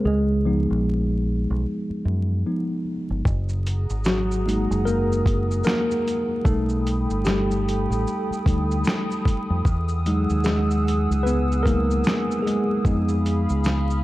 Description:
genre	lo-fi hip hop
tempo	75 BPM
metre	4/4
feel	swing 61% on 16ths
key	unclear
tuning	A4 = 441 Hz
part	mellow tine electric piano	accompaniment	0.0-14.0 s	F3 to B4	-23 LUFS	equal	medium stereo tremolo, low-pass filter
part	deep dub fingered electric bass	bass	0.1-14.0 s	Gb1 to Gb2	-23 LUFS	equal	none
part	warbly tape-like pad	sustained chords	3.7-14.0 s	Ab4 to E6	-30 LUFS	right 2 dB	chorus, built-in reverb, low-pass filter
part	dusty soul sampler-style drum kit	drums	3.3-14.0 s	finger snaps, hi-hat, kick drum, shaker, snare drum	-25 LUFS	equal	overdrive, vintage 12-bit sampler grit
room	moderate plate reverb, RT60 2.9 s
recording	dark, warm production, vinyl crackle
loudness	-20 LUFS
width	side -17 dB against mid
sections	0.0-14.0 A section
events	tine electric piano solo 0.0-14.0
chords	0.1 Db9; 3.3 Gb69; 6.5 B7alt; 9.7 Emaj9; 12.9 Fm7b5

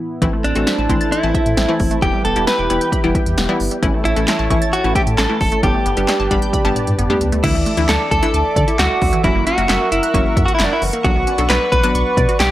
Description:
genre	synth-pop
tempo	133 BPM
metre	4/4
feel	straight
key	D major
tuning	A4 = 440 Hz
part	warm analog pad	sustained chords	0.0-12.5 s	A2 to D6	-24 LUFS	right 1 dB	chorus
part	analog pluck	accompaniment	0.2-12.5 s	E3 to A4	-22 LUFS	left 2 dB	chorus
part	resonant blip pluck	arpeggios	0.2-12.3 s	D3 to A6	-25 LUFS	right 2 dB	phaser, slapback echo
part	round analog bass	bass	0.2-12.5 s	E1 to D3	-21 LUFS	equal	none
part	deep house drum kit	drums	0.2-12.5 s	crash cymbal, handclaps, hi-hat, kick drum, snare drum, toms	-19 LUFS	equal	none
part	direct-recorded clean electric guitar	melody	0.4-12.5 s	D4 to B4	-18 LUFS	equal	slapback echo
room	light reverb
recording	none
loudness	-14 LUFS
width	side -14 dB against mid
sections	0.2-7.4 A section; 7.4-12.5 B section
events	break 0.0; drum fill 6.5-7.4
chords	0.2 Am; 2.0 Em; 3.8 A; 5.6 Gadd9; 7.4 Dsus2; 9.2 F#7; 11.0 Bmadd9

